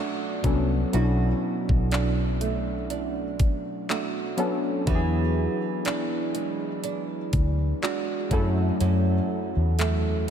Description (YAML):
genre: contemporary R&B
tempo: 61 BPM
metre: 4/4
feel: swing 54% on 16ths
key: B minor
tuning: A4 = 436 Hz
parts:
  - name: warm analog keys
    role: accompaniment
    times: 0.0-10.3 s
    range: F#3 to A4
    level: -28 LUFS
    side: left 2 dB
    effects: chorus
  - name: nylon-string guitar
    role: arpeggios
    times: 0.0-10.3 s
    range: F#2 to F#4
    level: -30 LUFS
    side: right 6 dB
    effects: wide subtle chorus, ping-pong delay
  - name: vintage muted fingered electric bass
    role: bass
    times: 0.4-10.3 s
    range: B1 to F#2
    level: -25 LUFS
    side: equal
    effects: none
  - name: trap drum kit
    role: drums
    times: 0.4-10.0 s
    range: handclaps, hi-hat, kick drum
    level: -29 LUFS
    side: equal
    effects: none
room: moderate cathedral reverb, RT60 6.2 s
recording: dreamy mix soaked in reverb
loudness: -23 LUFS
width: side -8 dB against mid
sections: 0.0-10.3 A section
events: kick muted 8.8-10.3; synth keys fill 9.8-10.3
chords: 0.0 Bm7; 4.9 E9; 8.3 F#m7